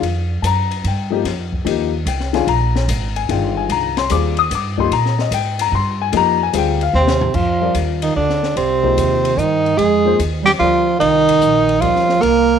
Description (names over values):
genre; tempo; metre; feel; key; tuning
modal jazz; 148 BPM; 3/4; swing 67% on 8ths; F dorian; A4 = 440 Hz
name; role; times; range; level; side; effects
dark baby grand piano; accompaniment; 0.0-12.4 s; Eb3 to Eb6; -19 LUFS; left 11 dB; none
upright bass; bass; 0.0-12.6 s; G1 to Bb2; -21 LUFS; right 1 dB; none
open jazz drum kit; drums; 0.0-12.4 s; crash cymbal, hi-hat, kick drum, ride cymbal, snare drum, toms; -27 LUFS; left 6 dB; none
mellow bass clarinet; second line; 6.9-12.6 s; C3 to Bb3; -19 LUFS; right 13 dB; none
breathy tenor saxophone; melody; 7.0-12.6 s; C4 to Bb4; -15 LUFS; equal; none
room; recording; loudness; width
moderate plate reverb, RT60 1.4 s, small room ambience; 1960s-style stereo with parts hard left and right; -14 LUFS; side -8 dB against mid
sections
0.0-7.3 A section; 7.3-12.6 B section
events
drum fill 6.9-7.3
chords
0.0 F9sus4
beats
| 0.03 0.44 0.84 | 1.25 1.66 2.06 | 2.47 2.88 3.28 | 3.69 4.10 4.50 | 4.91 5.32 5.72 | 6.13 6.53 6.94 | 7.35 7.75 8.16 | 8.57 8.97 9.38 | 9.79 10.19 10.60 | 11.01 11.41 11.82 | 12.22